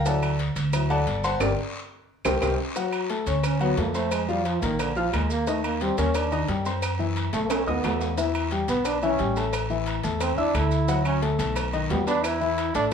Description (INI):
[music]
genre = Afro-Cuban jazz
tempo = 177 BPM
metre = 4/4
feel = straight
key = unclear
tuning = A4 = 438 Hz
[part]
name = dark baby grand piano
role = accompaniment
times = 0.0-12.9 s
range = Eb3 to F6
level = -27 LUFS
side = left 4 dB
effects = none
[part]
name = upright bass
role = bass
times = 0.0-12.9 s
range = G1 to F#2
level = -27 LUFS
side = equal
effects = none
[part]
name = agogo bells and timbales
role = percussion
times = 0.1-12.7 s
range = none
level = -33 LUFS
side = right 5 dB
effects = none
[part]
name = cowbell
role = percussion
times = 0.1-12.9 s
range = none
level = -36 LUFS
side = left 7 dB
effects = none
[part]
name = guiro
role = percussion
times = 0.1-12.9 s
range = none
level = -40 LUFS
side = left 5 dB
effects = none
[part]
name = maracas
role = percussion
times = 0.1-12.9 s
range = none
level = -42 LUFS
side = right 6 dB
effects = none
[part]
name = claves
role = percussion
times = 0.2-12.4 s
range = none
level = -37 LUFS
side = right 6 dB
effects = none
[part]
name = warm trombone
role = second line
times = 3.4-12.9 s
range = D3 to E4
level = -27 LUFS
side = right 4 dB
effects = none
[sound]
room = light reverb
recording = small room ambience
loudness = -22 LUFS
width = side -7 dB against mid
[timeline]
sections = 0.0-2.8 A section; 2.8-12.9 A section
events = grand piano solo 0.0-2.8; band accent 1.4-2.8; drum fill 1.9-2.8, 7.5-8.2; trombone solo 2.8-12.9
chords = 0.1 Dmaj7; 0.7 D7; 1.4 Gm; 2.1 C5; 2.8 Dmaj7; 4.1 F5; 4.8 Bb5; 5.5 Ebmaj7; 6.8 F#m7b5; 7.5 B7; 8.2 Em; 9.5 A5; 10.9 D; 11.6 Baug7; 12.2 E5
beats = | 0.05 0.39 0.73 1.07 | 1.41 1.75 2.08 2.42 | 2.76 3.10 3.44 3.78 | 4.12 4.46 4.79 5.13 | 5.47 5.81 6.15 6.49 | 6.83 7.17 7.50 7.84 | 8.18 8.52 8.86 9.20 | 9.53 9.87 10.21 10.55 | 10.89 11.22 11.56 11.90 | 12.24 12.58 12.92